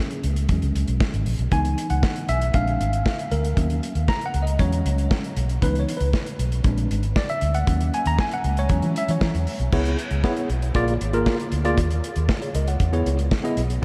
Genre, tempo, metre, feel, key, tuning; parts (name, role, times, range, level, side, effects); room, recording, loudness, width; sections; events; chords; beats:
early-eighties boogie funk; 117 BPM; 4/4; straight; C# dorian; A4 = 440 Hz
tine electric piano; accompaniment; 0.0-13.8 s; E3 to A#5; -28 LUFS; equal; overdrive
modern studio drum kit; drums; 0.1-13.8 s; crash cymbal, hi-hat, kick drum, snare drum; -28 LUFS; equal
vintage muted fingered electric bass; bass; 0.2-13.8 s; G#1 to E3; -25 LUFS; equal
moderate huge ambient reverb, RT60 7.4 s; dreamy mix soaked in reverb; -23 LUFS; mono
0.0-9.7 A section; 9.7-13.8 B section
tine electric piano solo 0.0-9.7
0.5 E6 (rootless); 1.5 C#m7; 2.5 A#7; 3.6 D#m7; 4.6 E6; 5.6 C#m7; 6.6 A#7; 7.7 D#m7; 8.7 E6; 9.7 C#m7; 10.8 A#7; 11.8 C#sus24; 12.8 E6
0.50 1.01 | 1.52 2.03 2.55 3.06 | 3.57 4.08 4.60 5.11 | 5.62 6.14 6.65 7.16 | 7.67 8.19 8.70 9.21 | 9.73 10.24 10.75 11.27 | 11.78 12.29 12.80 13.32 | 13.83